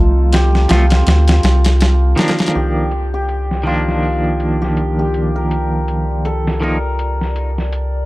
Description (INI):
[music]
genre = trip hop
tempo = 81 BPM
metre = 4/4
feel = swing 57% on 16ths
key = C dorian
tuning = A4 = 441 Hz
[part]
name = hammered dulcimer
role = melody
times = 0.0-8.1 s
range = Eb4 to Bb4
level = -22 LUFS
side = left 1 dB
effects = tape echo
[part]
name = clean electric guitar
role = accompaniment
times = 0.0-6.8 s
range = Eb3 to D5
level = -20 LUFS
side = right 1 dB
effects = tremolo
[part]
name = warbly tape-like pad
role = sustained chords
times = 0.0-8.1 s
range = C4 to D5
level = -35 LUFS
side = equal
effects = none
[part]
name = round analog bass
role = bass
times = 0.0-8.1 s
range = C2 to D2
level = -15 LUFS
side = equal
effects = tube saturation
[part]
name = boom bap sampler-style drum kit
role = drums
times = 0.3-7.9 s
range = hi-hat, snare drum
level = -18 LUFS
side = equal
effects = low-pass filter on hats, low-pass filter on snare, low-pass filter on kick
[sound]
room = little or no reverb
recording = dark, warm production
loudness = -13 LUFS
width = side -19 dB against mid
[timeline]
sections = 0.0-2.5 A section; 2.5-8.1 B section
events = none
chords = 0.0 Dm/C; 2.5 Cm11